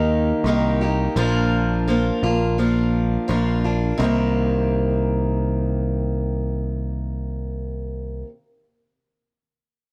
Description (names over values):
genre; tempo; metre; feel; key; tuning
folk rock and heartland rock; 84 BPM; 4/4; straight; C minor; A4 = 440 Hz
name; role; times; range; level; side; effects
picked steel-string acoustic guitar; accompaniment; 0.0-8.3 s; Bb2 to G4; -24 LUFS; equal; none
picked electric bass; bass; 0.0-8.2 s; Bb1 to Eb2; -25 LUFS; equal; none
room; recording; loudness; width
moderate large studio reverb, RT60 1.4 s; none; -22 LUFS; mono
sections
0.0-4.0 A section; 4.0-6.8 B section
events
none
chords
0.0 Eb; 1.2 Bb; 4.0 Cm7